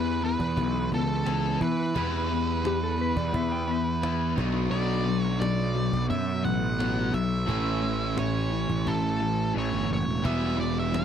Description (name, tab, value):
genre	classic rock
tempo	87 BPM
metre	4/4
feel	straight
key	E dorian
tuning	A4 = 440 Hz
part	octave-fuzz lead guitar	melody	0.0-11.0 s	A4 to G5	-31 LUFS	right 1 dB	distortion, slapback echo
part	cranked stack guitar	riff	0.0-11.0 s	A2 to E4	-31 LUFS	left 14 dB	overdrive
part	cranked stack guitar	riff	0.0-11.0 s	A2 to G4	-31 LUFS	right 11 dB	overdrive
part	fuzz picked electric bass	bass	0.0-11.0 s	E1 to E3	-29 LUFS	equal	overdrive
part	cajon	drums	0.4-11.0 s	none	-36 LUFS	equal	none
part	clean lap steel guitar	second line	2.7-4.4 s	G4 to G5	-34 LUFS	left 2 dB	none
room	little or no reverb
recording	dry, close 1970s-style studio recording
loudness	-24 LUFS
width	side -8 dB against mid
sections	0.0-11.0 A section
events	kick and snare drop out 9.6-10.2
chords	0.0 Em; 4.4 Bm; 7.5 A; 10.2 Em